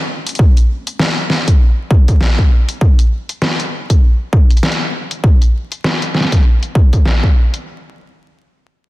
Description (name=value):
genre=glitch hop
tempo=99 BPM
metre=4/4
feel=swing 59% on 16ths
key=Bb minor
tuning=A4 = 440 Hz
part: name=warm analog pad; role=sustained chords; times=0.0-2.8 s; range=Ab3 to Db4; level=-41 LUFS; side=left 1 dB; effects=none
part: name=dubstep drum kit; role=drums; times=0.3-7.6 s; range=hi-hat, snare drum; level=-17 LUFS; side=equal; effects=low-pass filter on hats, low-pass filter on snare, low-pass filter on room
part: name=electronic kick drum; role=drums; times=0.4-7.3 s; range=none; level=-10 LUFS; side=equal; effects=none
room=digital ambience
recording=dense, heavily limited modern master, vinyl crackle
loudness=-11 LUFS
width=side -19 dB against mid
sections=0.0-7.7 A section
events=none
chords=0.0 Bbm9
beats=| 0.39 0.99 1.60 2.21 | 2.81 3.42 4.02 4.63 | 5.24 5.84 6.45 7.05